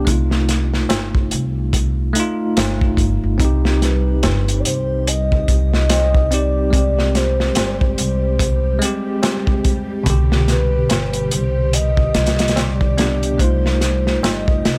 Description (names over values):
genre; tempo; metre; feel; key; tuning
trip hop; 72 BPM; 4/4; swing 59% on 16ths; C harmonic minor; A4 = 440 Hz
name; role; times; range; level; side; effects
bell-like tine electric piano; accompaniment; 0.0-14.8 s; B2 to G4; -25 LUFS; equal; tremolo, low-pass filter, tape echo
upright bass; bass; 0.0-14.8 s; G1 to C2; -21 LUFS; equal; none
crunchy breakbeat drum kit; drums; 0.1-14.8 s; hi-hat, kick drum, snare drum; -21 LUFS; equal; none
tabla; percussion; 0.9-14.4 s; none; -32 LUFS; equal; none
string machine, cellos; sustained chords; 3.4-14.8 s; G3 to G4; -32 LUFS; equal; ensemble chorus
pure breathy sine lead; melody; 3.8-14.8 s; B4 to Eb5; -25 LUFS; equal; phaser, lush chorus, tape echo
room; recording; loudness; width
little or no reverb; none; -17 LUFS; mono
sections
0.0-14.8 A section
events
filter sweep on tine electric piano 0.0-14.8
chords
0.1 F7; 3.4 Cm; 6.7 Abmaj7; 10.1 G; 13.4 F7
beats
| 0.06 0.90 1.73 2.56 | 3.40 4.23 5.06 5.90 | 6.73 7.56 8.40 9.23 | 10.06 10.90 11.73 12.56 | 13.40 14.23